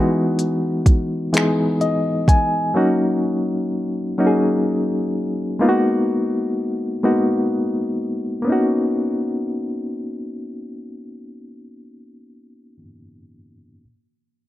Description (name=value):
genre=slow six-eight R&B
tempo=42 BPM (dotted quarters)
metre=6/8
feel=straight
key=B major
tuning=A4 = 444 Hz
part: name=reed electric piano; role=accompaniment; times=0.0-13.8 s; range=E3 to G#5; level=-19 LUFS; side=left 1 dB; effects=fast tremolo
part: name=smooth R&B drum kit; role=drums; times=0.4-2.5 s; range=finger snaps, hi-hat, kick drum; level=-16 LUFS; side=equal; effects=overdrive
room=light reverb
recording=dark, warm production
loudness=-18 LUFS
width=side -14 dB against mid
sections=0.0-8.5 A section; 8.5-11.3 B section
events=reed electric piano fill 1.3-2.8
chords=0.0 Emaj9; 2.8 D#m7; 5.6 G#m9; 8.5 Bmaj7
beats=1.32 | 2.75 4.18 | 5.61 7.04 | 8.47 9.89